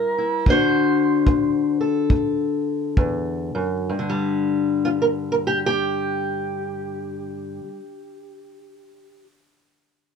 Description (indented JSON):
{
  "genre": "acoustic country blues, solo or duo",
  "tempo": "64-77 BPM",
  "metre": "4/4",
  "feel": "swing 63% on 8ths",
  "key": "unclear",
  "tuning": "A4 = 440 Hz",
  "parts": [
    { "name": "fingerpicked steel-string acoustic guitar", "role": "melody", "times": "0.0-9.2 s", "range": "D2 to C5", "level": "-20 LUFS", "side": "left 2 dB", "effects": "none" },
    { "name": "kick drum", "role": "drums", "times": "0.5-3.2 s", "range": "none", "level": "-20 LUFS", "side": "equal", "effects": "none" }
  ],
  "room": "light reverb",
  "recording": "close, detailed microphones",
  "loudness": "-19 LUFS",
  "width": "side -6 dB against mid",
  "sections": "0.0-3.9 A section; 3.9-7.6 B section",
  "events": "slowing down 0.0-3.9",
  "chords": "0.5 D7; 3.9 G5"
}